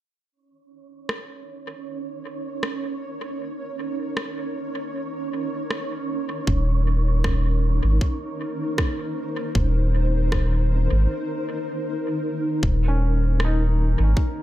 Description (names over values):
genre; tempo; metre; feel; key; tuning
ambient dub; 78 BPM; 4/4; swing 56% on 16ths; unclear; A4 = 440 Hz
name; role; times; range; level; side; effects
granular cloud pad; sustained chords; 1.7-14.4 s; Eb4 to Db5; -30 LUFS; left 1 dB; built-in reverb
wind-like tuned noise texture; texture; 1.1-11.1 s; Db4; -32 LUFS; right 5 dB; built-in reverb
electronic rim click; drums; 1.1-13.6 s; none; -31 LUFS; equal; studio reverb, dub echo
warm sub bass; bass; 6.5-14.1 s; Eb1 to Ab1; -19 LUFS; equal; none
electronic kick drum; drums; 6.5-14.3 s; none; -23 LUFS; equal; studio reverb
felt-muted upright piano; arpeggios; 12.9-14.4 s; Db4 to Eb4; -30 LUFS; right 1 dB; low-pass filter, analog delay
room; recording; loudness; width
digital ambience; echo-heavy mix; -22 LUFS; side -14 dB against mid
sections
0.3-12.6 A section; 12.6-14.4 B section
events
fade-in on ambient pad 0.3-12.6; break 11.1-12.6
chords
0.3 Eb5; 12.6 Eb7(no3)